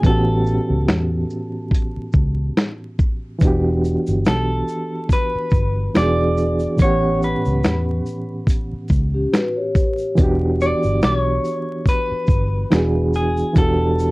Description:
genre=lo-fi hip hop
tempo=71 BPM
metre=4/4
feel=swing 55% on 16ths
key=E dorian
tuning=A4 = 440 Hz
part: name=clean electric guitar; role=melody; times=0.0-14.1 s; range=G#4 to D5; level=-24 LUFS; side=equal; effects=low-pass filter, analog delay
part: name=overdriven reed electric piano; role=accompaniment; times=0.0-14.1 s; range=A2 to F#5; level=-22 LUFS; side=right 1 dB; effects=fast tremolo, cassette tape, low-pass filter
part: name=vintage muted fingered electric bass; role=bass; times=0.0-14.1 s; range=E1 to E2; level=-21 LUFS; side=equal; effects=none
part: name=dusty soul sampler-style drum kit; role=drums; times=0.0-14.1 s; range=finger snaps, hi-hat, kick drum, shaker, snare drum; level=-17 LUFS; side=equal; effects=vintage 12-bit sampler grit
part: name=tube shaker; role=percussion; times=3.4-14.1 s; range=none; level=-48 LUFS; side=left 3 dB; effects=none
part: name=vibraphone with soft mallets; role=second line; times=9.1-10.1 s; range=C#4 to C#5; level=-22 LUFS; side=left 2 dB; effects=low-pass filter, analog delay
room=light reverb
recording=worn, warbling old tape, cassette tape, vinyl crackle, warbly pitch drift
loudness=-16 LUFS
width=side -22 dB against mid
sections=0.0-14.1 A section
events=none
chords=0.0 A13; 3.4 Em7; 5.9 E9; 6.8 A13; 10.2 Em7; 12.7 E9; 13.6 Em11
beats=| 0.03 0.88 1.72 2.57 | 3.41 4.26 5.10 5.95 | 6.79 7.64 8.48 9.33 | 10.17 11.02 11.86 12.71 | 13.55

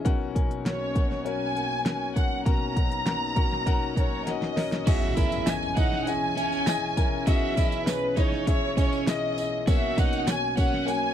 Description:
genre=piano-driven pop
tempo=100 BPM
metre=4/4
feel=straight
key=unclear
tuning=A4 = 444 Hz
part: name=clear concert grand piano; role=accompaniment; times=0.0-11.1 s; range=B1 to G#5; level=-31 LUFS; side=left 8 dB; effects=none
part: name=airy breathy pad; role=sustained chords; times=0.0-11.1 s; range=B2 to D#4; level=-36 LUFS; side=right 1 dB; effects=chorus
part: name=pop drum kit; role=drums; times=0.1-11.0 s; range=crash cymbal, hi-hat, kick drum, snare drum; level=-25 LUFS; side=equal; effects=none
part: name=warm studio violin section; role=melody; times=0.7-11.1 s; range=B4 to A#5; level=-29 LUFS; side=equal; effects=none
part: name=crunchy overdriven guitar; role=riff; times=4.9-10.9 s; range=C#4 to F#4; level=-31 LUFS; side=right 9 dB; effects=none
part: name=tambourine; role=percussion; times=4.9-11.0 s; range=none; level=-42 LUFS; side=right 22 dB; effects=none
part: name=impact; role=sound effects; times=4.9-7.3 s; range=none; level=-34 LUFS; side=right 1 dB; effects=none
room=little or no reverb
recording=dry, close 1970s-style studio recording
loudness=-23 LUFS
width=side -10 dB against mid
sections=0.0-4.9 A section; 4.9-11.1 B section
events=drum fill 4.3-4.9; impact 4.9-7.3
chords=0.1 F#/B; 4.9 C#madd9/B; 9.7 F#/B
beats=| 0.06 0.66 1.26 1.86 | 2.46 3.06 3.66 4.27 | 4.87 5.47 6.07 6.67 | 7.27 7.87 8.47 9.07 | 9.68 10.28 10.88

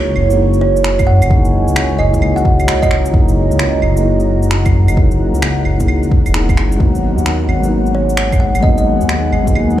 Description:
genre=future garage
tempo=131 BPM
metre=4/4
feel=swing 64% on 16ths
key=unclear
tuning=A4 = 441 Hz
part: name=felt-muted upright piano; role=accompaniment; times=0.0-9.8 s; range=E3 to E4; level=-19 LUFS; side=left 3 dB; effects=vintage 12-bit sampler grit, sidechain pumping, analog delay
part: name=dark analog pad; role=sustained chords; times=0.0-9.8 s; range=G#3 to A#5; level=-20 LUFS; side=right 2 dB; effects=chorus, phaser, sidechain pumping
part: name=dark detuned saw bass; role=bass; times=0.0-9.8 s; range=E1 to G#2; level=-15 LUFS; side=equal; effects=tube saturation
part: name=electronic claves, shaker and finger snaps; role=drums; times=0.2-9.8 s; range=none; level=-22 LUFS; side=right 1 dB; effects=overdrive
part: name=kalimba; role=melody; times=0.6-3.3, 7.9-8.8 s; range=C#5 to F#5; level=-20 LUFS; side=right 2 dB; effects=analog delay
part: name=electronic kick drum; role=drums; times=1.0-9.5 s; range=none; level=-14 LUFS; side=equal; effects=overdrive
room=digital ambience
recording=played on a big sound system in a bare room, large studio reverb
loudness=-11 LUFS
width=side -12 dB against mid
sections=0.0-9.8 A section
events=none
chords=0.0 F#13; 6.8 G#m7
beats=0.39 0.85 | 1.31 1.76 2.22 2.68 | 3.14 3.60 4.05 4.51 | 4.97 5.43 5.89 6.34 | 6.80 7.26 7.72 8.18 | 8.63 9.09 9.55

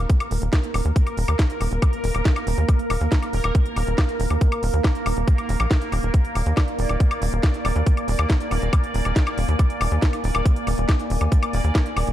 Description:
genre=psychedelic trance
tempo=139 BPM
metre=4/4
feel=straight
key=unclear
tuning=A4 = 440 Hz
part: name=bubbling stepped-filter texture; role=sustained chords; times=0.0-12.1 s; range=Bb3 to D5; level=-28 LUFS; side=right 1 dB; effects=chorus, built-in reverb, sidechain pumping
part: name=tight sequencer bass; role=bass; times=0.0-12.1 s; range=Eb1 to Eb2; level=-22 LUFS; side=equal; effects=none
part: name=warbly tape-like pad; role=texture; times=1.1-12.1 s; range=Bb3 to Bb5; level=-39 LUFS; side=left 1 dB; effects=none
part: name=electronic kick drum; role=drums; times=0.1-11.8 s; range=none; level=-19 LUFS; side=equal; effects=none
part: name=garage drum kit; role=drums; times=0.1-12.1 s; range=hi-hat, snare drum, woodblock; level=-28 LUFS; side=left 1 dB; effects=none
room=little or no reverb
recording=dark, warm production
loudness=-19 LUFS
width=side -12 dB against mid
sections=0.0-12.1 A section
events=none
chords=0.0 Eb5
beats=0.10 0.53 | 0.96 1.39 1.82 2.25 | 2.69 3.12 3.55 3.98 | 4.41 4.84 5.28 5.71 | 6.14 6.57 7.00 7.43 | 7.87 8.30 8.73 9.16 | 9.59 10.02 10.46 10.89 | 11.32 11.75

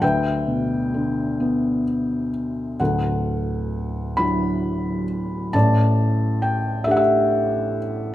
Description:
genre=classical, lyrical solo piano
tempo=43-46 BPM (dotted quarters)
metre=6/8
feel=rubato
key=D major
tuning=A4 = 440 Hz
part: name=felt-muted upright piano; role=solo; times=0.0-8.1 s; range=D1 to B5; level=-19 LUFS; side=equal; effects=none
room=moderate recital hall reverb, RT60 1.5 s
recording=minimal, uncompressed stereo recording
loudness=-19 LUFS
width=side -13 dB against mid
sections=0.0-2.8 A section; 2.8-8.1 B section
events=none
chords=0.0 G6/D; 2.8 Dadd9; 5.5 A7sus4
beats=| 0.02 1.40 | 2.80 4.18 | 5.54 6.87

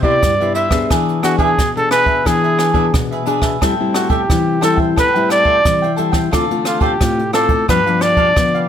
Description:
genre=samba and choro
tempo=88 BPM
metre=4/4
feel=straight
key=unclear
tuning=A4 = 440 Hz
part: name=mellow trumpet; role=melody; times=0.0-8.7 s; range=F4 to E5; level=-15 LUFS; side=right 1 dB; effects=none
part: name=cavaquinho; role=accompaniment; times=0.0-8.7 s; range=D4 to G5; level=-21 LUFS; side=right 1 dB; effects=none
part: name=nylon-string guitar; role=accompaniment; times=0.0-8.7 s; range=G2 to Ab4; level=-18 LUFS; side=left 4 dB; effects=none
part: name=jazz brush drum kit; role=drums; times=0.0-8.7 s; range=hi-hat, kick drum, rim click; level=-19 LUFS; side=right 1 dB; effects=none
room=moderate studio reverb, RT60 0.9 s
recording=none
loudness=-12 LUFS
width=side -9 dB against mid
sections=0.0-8.7 A section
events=none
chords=0.0 Cmaj7; 0.9 E7; 3.6 Am7; 6.3 Dm7; 7.7 G7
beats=0.23 | 0.91 1.58 2.26 2.94 | 3.62 4.30 4.97 5.65 | 6.33 7.01 7.69 8.37

